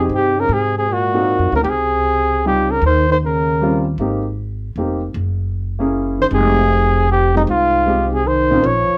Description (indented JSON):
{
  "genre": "jazz, small-group swing and bop",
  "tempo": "154 BPM",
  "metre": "3/4",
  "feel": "swing 64% on 8ths",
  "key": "F minor",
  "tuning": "A4 = 437 Hz",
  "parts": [
    { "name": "warm flugelhorn", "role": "melody", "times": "0.0-3.8, 6.2-9.0 s", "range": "Eb4 to Db5", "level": "-18 LUFS", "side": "equal", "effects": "none" },
    { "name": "breathy trombone", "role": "second line", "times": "0.0-3.8, 6.2-9.0 s", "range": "G2 to F3", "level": "-25 LUFS", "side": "equal", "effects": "none" },
    { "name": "warm baby grand piano", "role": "accompaniment", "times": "0.0-8.6 s", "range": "Bb2 to Bb4", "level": "-22 LUFS", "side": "equal", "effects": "none" },
    { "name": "upright bass", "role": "bass", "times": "0.0-8.9 s", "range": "F1 to Ab2", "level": "-22 LUFS", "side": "equal", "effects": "none" }
  ],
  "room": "light reverb",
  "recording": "none",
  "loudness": "-17 LUFS",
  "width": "mono",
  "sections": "0.0-8.6 A section",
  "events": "none",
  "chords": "0.5 Ab9; 1.7 Dbmaj9#11; 2.8 Eb13; 4.0 Abmaj9; 5.2 Gb9; 6.3 Fm9"
}